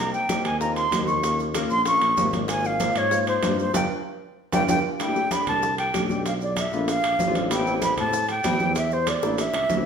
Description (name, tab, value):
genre	Afro-Cuban jazz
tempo	192 BPM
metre	4/4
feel	straight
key	C major from 5.0 s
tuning	A4 = 436 Hz
part	concert flute	melody	0.0-9.9 s	C5 to Db6	-24 LUFS	right 1 dB	none
part	warm grand piano	accompaniment	0.0-9.9 s	G3 to Bb4	-28 LUFS	left 3 dB	none
part	mellow tuba	bass	0.0-9.9 s	G1 to A2	-30 LUFS	equal	none
part	bongos	percussion	0.1-9.8 s	none	-36 LUFS	left 3 dB	none
part	congas	percussion	0.1-9.9 s	none	-32 LUFS	right 2 dB	none
part	maracas	percussion	0.1-9.9 s	none	-38 LUFS	right 4 dB	none
part	timbales	percussion	0.3-9.9 s	none	-31 LUFS	right 4 dB	none
room	wet large studio reverb, RT60 1.1 s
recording	band playing live in one room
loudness	-21 LUFS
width	side -7 dB against mid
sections	0.0-5.0 A section; 5.0-9.9 B section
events	band accent 3.7-5.0; drum fill 4.1-5.0, 9.2-9.9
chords	0.0 Cm7; 1.2 Eb9; 2.5 Ab69; 3.7 G5; 5.0 C5; 6.3 Bm7b5; 6.9 Bb9; 7.5 Am7; 8.8 Em7b5